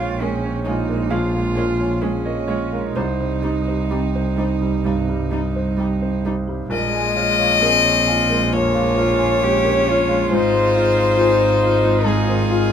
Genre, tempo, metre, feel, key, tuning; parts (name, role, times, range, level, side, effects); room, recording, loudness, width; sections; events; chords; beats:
neoclassical piano and strings; 63-69 BPM; 4/4; rubato; Bb dorian; A4 = 440 Hz
warm cello; second line; 0.0-12.7 s; Db4 to G4; -26 LUFS; right 6 dB
bright baby grand piano; accompaniment; 0.0-12.7 s; Bb1 to G5; -24 LUFS; right 1 dB
folk marimba with soft mallets; arpeggios; 0.0-12.6 s; C4 to Ab5; -29 LUFS; left 4 dB
warm double bass; bass; 0.0-12.7 s; Ab1 to C2; -22 LUFS; equal
rich violin; melody; 0.2-12.7 s; Db4 to Eb5; -18 LUFS; left 4 dB
warm viola; accompaniment; 0.2-12.7 s; G3 to Eb4; -27 LUFS; right 1 dB
light reverb; minimal, uncompressed stereo recording; -16 LUFS; side -8 dB against mid
0.0-6.7 A section; 6.7-12.7 B section
0.0 Bbm7; 3.0 Cm; 6.7 Bbm7; 10.3 Fm7/Ab
0.21 1.11 2.02 | 2.96 3.91 4.85 5.78 | 6.71 7.62 8.53 9.43 | 10.31 11.19 12.07